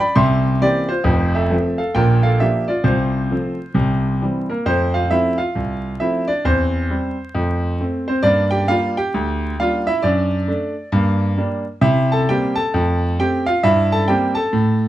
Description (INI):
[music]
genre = jazz, stride piano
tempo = 134 BPM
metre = 4/4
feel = swing 63% on 8ths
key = F major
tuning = A4 = 440 Hz
[part]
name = clear grand piano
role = solo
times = 0.0-14.9 s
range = F1 to C6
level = -16 LUFS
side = equal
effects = none
[sound]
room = moderate studio ambience, RT60 0.5 s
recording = dark, warm production, vinyl crackle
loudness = -16 LUFS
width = side -14 dB against mid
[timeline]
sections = 0.0-4.7 A section; 4.7-14.9 B section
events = none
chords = 0.2 C7; 1.1 F; 2.0 Bb; 2.9 F/C; 3.8 C; 4.7 F; 6.5 C/E; 7.4 F; 8.3 Gm; 10.0 D/F#; 10.9 Gm; 11.8 C7; 12.7 F; 13.6 C7/G